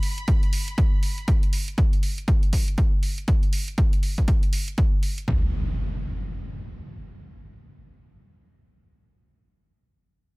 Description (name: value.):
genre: deep house.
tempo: 120 BPM.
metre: 4/4.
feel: swing 60% on 16ths.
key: unclear.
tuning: A4 = 439 Hz.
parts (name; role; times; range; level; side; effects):
electronic hi-hat; drums; 0.0-5.3 s; none; -34 LUFS; right 3 dB; overdrive.
string machine, violins; texture; 0.0-1.3 s; B5; -40 LUFS; left 1 dB; ensemble chorus, sidechain pumping.
punchy analog drum machine; drums; 0.3-5.4 s; kick drum, toms; -21 LUFS; equal; overdrive.
impact; sound effects; 5.3-9.0 s; none; -31 LUFS; equal; none.
room: little or no reverb.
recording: echo-heavy mix.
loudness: -21 LUFS.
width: side -26 dB against mid.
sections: 0.0-5.3 A section; 5.3-9.3 B section.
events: none.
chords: none.